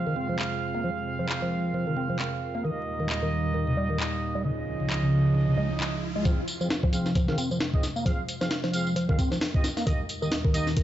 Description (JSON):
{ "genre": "breakbeat, breaks", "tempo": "133 BPM", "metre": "4/4", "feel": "swing 57% on 16ths", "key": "F minor", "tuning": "A4 = 439 Hz", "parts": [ { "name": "warbly tape-like pad", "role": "sustained chords", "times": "0.0-10.8 s", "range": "Db2 to C5", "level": "-32 LUFS", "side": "right 1 dB", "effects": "chorus, built-in reverb, sidechain pumping" }, { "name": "percussive tonewheel organ", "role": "riff", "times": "0.0-10.8 s", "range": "C3 to C4", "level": "-29 LUFS", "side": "equal", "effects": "fast rotary speaker, tube saturation, low-pass filter" }, { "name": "dark brass ensemble", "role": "stabs", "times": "0.0-10.7 s", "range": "Bb3 to F5", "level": "-33 LUFS", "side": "right 4 dB", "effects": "low-pass filter, dub echo" }, { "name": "electronic handclaps and tambourine", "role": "drums", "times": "0.4-10.8 s", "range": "none", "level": "-35 LUFS", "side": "left 1 dB", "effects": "none" }, { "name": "riser", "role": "sound effects", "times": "4.4-6.3 s", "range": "none", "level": "-41 LUFS", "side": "equal", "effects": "none" }, { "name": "breakbeat sampler-style drum kit", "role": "drums", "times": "6.3-10.8 s", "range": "hi-hat, kick drum, snare drum", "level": "-26 LUFS", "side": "equal", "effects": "low-pass filter on hats, low-pass filter on kick, low-pass filter on snare" } ], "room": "moderate digital room reverb, RT60 1.1 s, digital ambience", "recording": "vinyl crackle, nothing above 7.8 kHz", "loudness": "-25 LUFS", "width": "side -12 dB against mid", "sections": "0.0-6.3 A section; 6.3-10.8 B section", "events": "filter sweep on tonewheel organ 0.0-6.3, 6.3-10.8; riser 4.4-6.3; build-up 6.3-10.8; filter sweep on brass ensemble 6.3-10.8; filter sweep on ambient pad 6.3-10.8", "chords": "0.0 Fm; 2.6 Eb; 4.5 Dbadd9; 6.3 Fm; 9.9 Eb" }